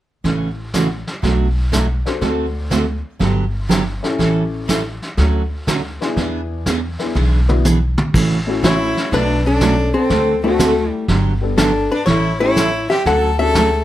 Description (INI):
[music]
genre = country, western swing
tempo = 122 BPM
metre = 4/4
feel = swing 68% on 8ths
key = A major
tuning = A4 = 440 Hz
[part]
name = picked steel-string acoustic guitar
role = accompaniment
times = 0.2-13.7 s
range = B2 to A4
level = -19 LUFS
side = right 3 dB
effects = none
[part]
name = upright bass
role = bass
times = 0.2-13.8 s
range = G1 to E2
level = -20 LUFS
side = equal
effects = none
[part]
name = vintage brush drum kit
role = drums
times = 0.2-13.8 s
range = brushed snare drum, crash cymbal, hi-hat, kick drum, snare drum, toms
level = -21 LUFS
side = equal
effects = none
[part]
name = warm upright piano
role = accompaniment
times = 2.1-13.5 s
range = G3 to C5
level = -22 LUFS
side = left 4 dB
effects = none
[part]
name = hollow-body jazz guitar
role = melody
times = 8.7-13.8 s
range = A3 to F#5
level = -18 LUFS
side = left 2 dB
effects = none
[part]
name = clear fiddle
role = second line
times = 8.7-13.8 s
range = A3 to A4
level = -21 LUFS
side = equal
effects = none
[sound]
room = moderate studio reverb, RT60 0.6 s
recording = none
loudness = -15 LUFS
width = side -13 dB against mid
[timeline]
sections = 0.2-8.1 A section; 8.1-13.8 B section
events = drum fill 7.2-8.1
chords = 0.2 A6; 1.2 Bm7; 2.2 D7; 3.2 Gmaj7; 4.2 A7; 5.2 Dmaj7; 6.2 E7; 8.1 A6; 9.1 Bm7; 10.1 D7; 11.1 Gmaj7; 12.1 A7; 13.1 Dmaj7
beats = | 0.25 0.74 1.24 1.73 | 2.22 2.71 3.21 3.70 | 4.19 4.69 5.18 5.67 | 6.17 6.66 7.15 7.65 | 8.14 8.63 9.12 9.62 | 10.11 10.60 11.09 11.59 | 12.08 12.57 13.06 13.56